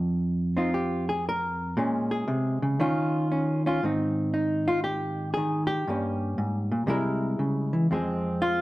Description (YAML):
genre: solo jazz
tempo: 117 BPM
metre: 4/4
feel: swing 66% on 8ths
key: Ab major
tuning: A4 = 440 Hz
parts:
  - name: hollow-body jazz guitar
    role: solo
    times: 0.0-8.6 s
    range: F2 to Bb4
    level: -24 LUFS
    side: equal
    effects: none
room: moderate large studio reverb, RT60 1.3 s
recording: close, detailed microphones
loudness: -24 LUFS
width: side -17 dB against mid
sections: 0.0-3.8 A section; 3.8-8.6 B section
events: hollow-body jazz guitar solo 0.0-3.8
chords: 0.0 F5; 1.8 Bbm7; 2.8 Ebsus2; 3.8 Abmaj7; 5.9 Gdim; 6.9 C7b13; 7.9 Fm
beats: 0.22 0.74 1.25 | 1.76 2.28 2.79 3.31 | 3.82 4.33 4.84 5.36 | 5.87 6.38 6.89 7.41 | 7.92 8.43